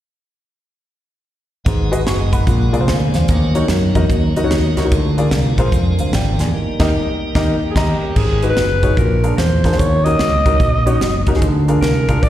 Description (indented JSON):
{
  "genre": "uptempo gospel",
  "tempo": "148 BPM",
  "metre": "4/4",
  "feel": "swing 64% on 8ths",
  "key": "unclear",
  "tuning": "A4 = 440 Hz",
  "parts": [
    { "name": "tonewheel organ", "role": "sustained chords", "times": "1.6-8.4 s", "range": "F#3 to G5", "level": "-25 LUFS", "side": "right 2 dB", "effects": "slow rotary speaker" },
    { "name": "warm grand piano", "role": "accompaniment", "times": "1.7-12.2 s", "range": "G#2 to C#6", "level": "-20 LUFS", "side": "left 2 dB", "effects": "slapback echo" },
    { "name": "fingered electric bass", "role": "bass", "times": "1.7-12.3 s", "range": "F#1 to F#2", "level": "-16 LUFS", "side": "equal", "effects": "none" },
    { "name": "crisp fusion drum kit", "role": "drums", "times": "1.7-12.3 s", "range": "crash cymbal, hi-hat, kick drum, snare drum", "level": "-19 LUFS", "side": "right 1 dB", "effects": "none" },
    { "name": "breathy alto saxophone", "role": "melody", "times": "7.7-12.3 s", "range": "G4 to D#5", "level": "-19 LUFS", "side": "left 1 dB", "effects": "slapback echo" }
  ],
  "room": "light reverb, studio ambience",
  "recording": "live gig heard through the venue's PA, recital hall reverb",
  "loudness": "-13 LUFS",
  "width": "side -12 dB against mid",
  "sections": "1.7-8.2 A section; 8.2-12.3 B section",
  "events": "band accent 6.5-8.2",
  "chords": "1.7 G#m7; 2.5 A#7; 3.3 D#m7; 4.9 A#7; 6.5 D#; 8.2 G#m7; 9.0 A#7; 9.8 D#m7; 11.4 A#7"
}